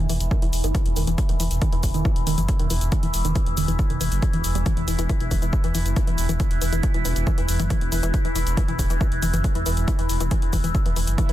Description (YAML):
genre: driving peak-time techno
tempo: 138 BPM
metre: 4/4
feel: straight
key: unclear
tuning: A4 = 440 Hz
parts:
  - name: tight sequenced synth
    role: riff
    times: 0.0-11.3 s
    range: D#3 to G3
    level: -29 LUFS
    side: left 1 dB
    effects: chorus, sidechain pumping, ping-pong delay
  - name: dark detuned saw bass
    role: bass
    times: 0.0-11.3 s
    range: E1 to F#1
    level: -24 LUFS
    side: equal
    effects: sidechain pumping
  - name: overtone-sweeping drone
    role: drone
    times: 0.0-11.3 s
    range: E3 to E4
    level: -30 LUFS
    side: left 1 dB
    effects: chorus, built-in reverb, phaser, sidechain pumping
  - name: electronic hi-hat and shaker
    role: drums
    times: 0.1-11.3 s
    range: none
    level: -31 LUFS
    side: left 2 dB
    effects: sidechain pumping on hats, sidechain pumping on perc
  - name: electronic kick drum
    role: drums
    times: 0.3-11.3 s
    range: none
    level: -22 LUFS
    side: equal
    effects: none
  - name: swell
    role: sound effects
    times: 11.3 s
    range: none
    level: -31 LUFS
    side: right 9 dB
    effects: none
room: digital ambience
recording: dense, heavily limited modern master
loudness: -20 LUFS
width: side -13 dB against mid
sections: 0.0-11.3 A section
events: none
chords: none